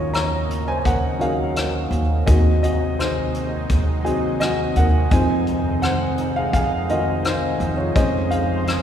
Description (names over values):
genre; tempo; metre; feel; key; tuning
acoustic folk-pop ballad; 84 BPM; 4/4; straight; unclear; A4 = 440 Hz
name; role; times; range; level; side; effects
dark grand piano; melody; 0.0-8.8 s; F1 to Bb5; -21 LUFS; equal; none
analog string pad; sustained chords; 0.0-8.8 s; C3 to C5; -30 LUFS; left 1 dB; ensemble chorus
upright bass; bass; 0.0-8.8 s; Eb2 to F2; -22 LUFS; right 1 dB; none
soft brush drum kit; drums; 0.1-8.8 s; hi-hat, kick drum, rim click; -26 LUFS; left 2 dB; none
room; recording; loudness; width
wet church reverb, RT60 3.5 s; recorded in a church or concert hall; -18 LUFS; side -9 dB against mid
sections
0.0-8.8 A section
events
none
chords
0.0 Ebm7; 2.3 Ab7/Eb; 5.1 Fm7; 7.9 Dbmaj9/F